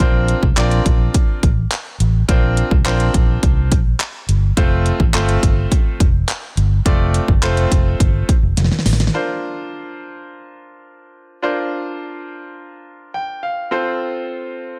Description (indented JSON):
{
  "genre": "dance-pop",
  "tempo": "105 BPM",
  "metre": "4/4",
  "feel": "straight",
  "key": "unclear",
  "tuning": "A4 = 440 Hz",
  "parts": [
    { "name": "bright concert grand piano", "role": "accompaniment", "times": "0.0-14.8 s", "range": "A3 to G5", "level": "-24 LUFS", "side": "equal", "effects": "sidechain pumping" },
    { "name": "vintage muted fingered electric bass", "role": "bass", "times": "0.0-9.1 s", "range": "F1 to C2", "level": "-19 LUFS", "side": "equal", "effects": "sidechain pumping" },
    { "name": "pop drum kit", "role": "drums", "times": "0.0-9.2 s", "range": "handclaps, hi-hat, kick drum, snare drum", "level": "-19 LUFS", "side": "equal", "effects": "none" }
  ],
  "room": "digital ambience",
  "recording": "none",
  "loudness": "-17 LUFS",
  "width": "mono",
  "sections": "0.0-9.1 A section; 9.1-14.8 B section",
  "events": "drop 0.0-9.1; drum fill 8.6-9.1; grand piano fill 12.9-13.7",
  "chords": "0.0 Bbadd9; 4.6 F; 9.1 Bbadd9; 13.7 F"
}